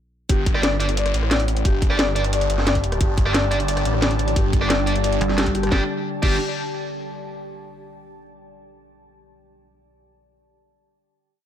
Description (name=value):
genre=dark technical drum and bass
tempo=177 BPM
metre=4/4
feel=straight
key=unclear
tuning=A4 = 436 Hz
part: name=felt-muted upright piano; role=arpeggios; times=0.3-6.4 s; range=G4 to D5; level=-28 LUFS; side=left 4 dB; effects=sidechain pumping, ping-pong delay
part: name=phased detuned saw bass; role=bass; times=0.3-6.4 s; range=G1 to A1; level=-22 LUFS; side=equal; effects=phaser, sidechain pumping
part: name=drum and bass drum kit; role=drums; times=0.3-6.3 s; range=crash cymbal, hi-hat, rim click, snare drum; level=-24 LUFS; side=equal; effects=none
part: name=electronic kick drum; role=drums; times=0.3-6.3 s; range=none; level=-20 LUFS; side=equal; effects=none
part: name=deep dark ambient pad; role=texture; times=1.9-7.0 s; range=G4 to A5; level=-30 LUFS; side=equal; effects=chorus, built-in reverb, sidechain pumping
part: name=tight distorted guitar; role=stabs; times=0.5-6.4 s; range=G3 to D5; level=-28 LUFS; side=right 2 dB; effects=distortion, ping-pong delay
part: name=metallic inharmonic drone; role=sustained chords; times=3.6-5.9 s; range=D3 to D4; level=-30 LUFS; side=left 3 dB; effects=chorus, built-in reverb, sidechain pumping
part: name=pulsing pluck wobble bass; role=bass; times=5.2-5.7 s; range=G1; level=-22 LUFS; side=right 1 dB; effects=chorus
room=light reverb, digital ambience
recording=faint mains hum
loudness=-18 LUFS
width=side -10 dB against mid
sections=0.3-5.7 drop; 5.7-7.1 final chord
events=drop 0.3-5.7; band accent 5.4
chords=0.3 G5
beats=| 0.29 0.63 0.97 1.31 | 1.65 1.99 2.33 2.67 | 3.01 3.35 3.68 4.02 | 4.36 4.70 5.04 5.38 | 5.72 6.06 6.40 6.74